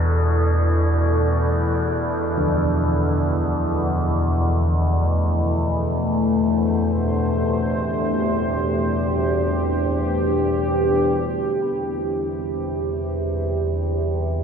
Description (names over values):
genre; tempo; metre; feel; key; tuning
dark ambient drone; free time; none; none; unclear; A4 = 441 Hz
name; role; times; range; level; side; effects
deep dark ambient pad; sustained chords; 0.0-14.4 s; A3 to D5; -23 LUFS; equal; chorus, built-in reverb
overtone-sweeping drone; drone; 0.0-14.4 s; E2 to C3; -21 LUFS; equal; chorus, built-in reverb
bronze singing bowl; texture; 0.0-14.4 s; B5; -50 LUFS; left 1 dB; none
carillon bells; arpeggios; 2.4-8.2 s; D3; -31 LUFS; right 1 dB; ping-pong delay
room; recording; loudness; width
wet cathedral reverb, RT60 5.5 s; dark, warm production; -19 LUFS; side -7 dB against mid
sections
0.0-11.6 A section; 11.6-14.4 B section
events
fade-out on church bells 0.0-11.6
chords
0.0 E7sus4; 3.9 Cmaj13